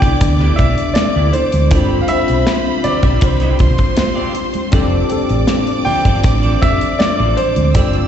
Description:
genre	lush 1970s-style soul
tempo	80 BPM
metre	4/4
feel	straight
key	unclear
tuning	A4 = 441 Hz
part	clear baby grand piano	melody	0.0-8.1 s	C5 to G5	-20 LUFS	equal	plate reverb, slapback echo
part	warm studio violin section	second line	0.0-8.1 s	C5 to E6	-23 LUFS	left 1 dB	plate reverb, slapback echo
part	tine electric piano	accompaniment	0.0-8.1 s	B3 to C5	-21 LUFS	left 3 dB	lush chorus, plate reverb, slapback echo
part	string machine, full ensemble	sustained chords	0.0-8.1 s	B2 to A4	-24 LUFS	left 1 dB	ensemble chorus, plate reverb
part	electric guitar through a small old amp	riff	0.0-8.1 s	B3 to E5	-26 LUFS	right 3 dB	analog chorus, slapback echo
part	hollow-body short-scale fingered electric bass	bass	0.0-8.0 s	F1 to D2	-16 LUFS	equal	none
part	modern studio drum kit	drums	0.0-8.1 s	hi-hat, kick drum, snare drum	-17 LUFS	equal	none
part	congas	percussion	0.6-7.7 s	none	-26 LUFS	right 5 dB	slapback echo
part	vibraphone with soft mallets	texture	1.0-1.8 s	A4	-34 LUFS	left 7 dB	none
room	light reverb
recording	live gig heard through the venue's PA, recital hall reverb, nothing above 8.0 kHz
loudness	-12 LUFS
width	side -9 dB against mid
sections	0.0-8.1 A section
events	none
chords	0.0 Cmaj9; 1.7 G7sus4; 4.7 F6

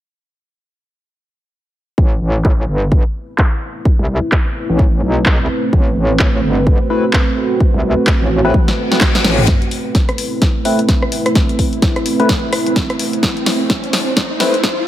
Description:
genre	bass house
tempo	128 BPM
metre	4/4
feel	swing 59% on 16ths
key	A dorian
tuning	A4 = 440 Hz
part	dark analog pad	sustained chords	3.7-14.9 s	A3 to C5	-19 LUFS	right 2 dB	chorus, sidechain pumping
part	metallic wobble bass	bass	2.0-9.5 s	G1 to C2	-16 LUFS	equal	distortion, chorus, overdrive, sidechain pumping
part	electronic kick drum	drums	2.0-14.7 s	none	-14 LUFS	equal	none
part	house drum kit	drums	2.4-14.7 s	handclaps, hi-hat, rim click, snare drum, toms	-18 LUFS	equal	low-pass filter on snare, low-pass filter on toms, low-pass filter on hats
part	percussive organ stab	stabs	6.9-14.5 s	A3 to B4	-19 LUFS	left 2 dB	analog chorus, sidechain pumping, digital delay
part	reverse cymbal and riser	sound effects	8.7-14.9 s	none	-25 LUFS	left 2 dB	none
room	light reverb, digital ambience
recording	high-pass filter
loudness	-12 LUFS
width	side -13 dB against mid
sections	2.0-9.5 A section; 9.5-14.9 B section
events	filter sweep on drum 2.0-9.5; drum fill 8.5-9.5, 9.5-14.9; reverse cymbal 8.7-9.5; build-up 9.5-14.9; riser 9.5-14.9; filter sweep on synth stab 9.5-14.9; filter sweep 9.5-14.9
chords	2.0 Amadd9

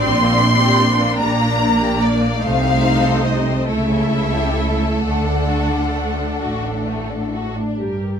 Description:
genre	classical, slow romantic movement for string orchestra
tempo	43-51 BPM (dotted quarters)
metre	6/8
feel	rubato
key	unclear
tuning	A4 = 440 Hz
part	warm symphonic violin section	melody	0.0-8.2 s	Bb4 to C6	-21 LUFS	left 2 dB	none
part	warm symphonic violin section	second line	0.0-7.8 s	G3 to D5	-24 LUFS	left 3 dB	none
part	rich studio viola section	accompaniment	0.0-8.2 s	G3 to G4	-22 LUFS	right 1 dB	none
part	dark symphonic cello section	bass	0.0-7.6 s	A2 to D3	-22 LUFS	right 1 dB	none
part	warm studio double bass section	bass	0.0-8.2 s	A1 to G2	-22 LUFS	right 1 dB	none
room	little or no reverb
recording	close, detailed microphones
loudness	-15 LUFS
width	side -7 dB against mid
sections	0.0-7.8 A section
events	none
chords	0.0 Gm/Bb; 2.4 Adim/C; 3.7 A/C#; 5.0 D

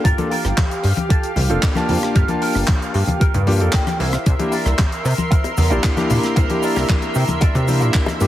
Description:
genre	nu-disco, nu disco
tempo	114 BPM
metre	4/4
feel	straight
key	G dorian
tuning	A4 = 440 Hz
part	lush unison pad	sustained chords	0.0-8.3 s	G4 to C6	-26 LUFS	right 1 dB	chorus, sidechain pumping
part	electric guitar with an envelope filter	riff	0.0-8.1 s	E4 to G5	-27 LUFS	right 2 dB	wide subtle chorus, low-pass filter, tape echo
part	electronic kick drum	drums	0.0-8.1 s	none	-16 LUFS	equal	overdrive
part	chorused synth bass	bass	0.1-8.3 s	F1 to C3	-18 LUFS	equal	none
part	tight funk drum kit	drums	0.1-8.3 s	handclaps, hi-hat, rim click	-26 LUFS	left 1 dB	none
part	warm electric grand piano	accompaniment	0.2-8.3 s	Bb3 to A5	-23 LUFS	left 2 dB	sidechain pumping, tape echo
part	congas, cabasa and bongos	percussion	0.2-8.3 s	none	-25 LUFS	left 2 dB	none
room	light reverb, small room ambience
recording	heavily compressed radio sound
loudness	-15 LUFS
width	side -13 dB against mid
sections	0.0-8.3 A section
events	filter sweep on clean electric guitar 0.0-8.3; clean electric guitar fill 3.5-4.3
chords	0.0 Gm7; 4.0 C7

